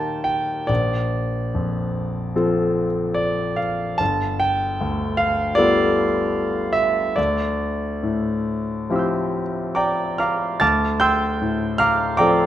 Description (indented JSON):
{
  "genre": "classical, impressionist solo piano",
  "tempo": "68-80 BPM",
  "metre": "4/4",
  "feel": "rubato",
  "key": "D minor",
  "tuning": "A4 = 436 Hz",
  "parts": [
    { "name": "clear concert grand piano", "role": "solo", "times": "0.0-12.5 s", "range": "G1 to A6", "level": "-19 LUFS", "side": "equal", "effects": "none" }
  ],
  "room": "wet recital hall reverb, RT60 1.5 s",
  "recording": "dark, warm production",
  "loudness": "-19 LUFS",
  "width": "side -12 dB against mid",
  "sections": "0.0-10.6 A section; 10.6-12.5 A section",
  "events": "none",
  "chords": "0.0 Eb; 0.7 Bbmaj9; 4.0 G9; 7.2 Dm11"
}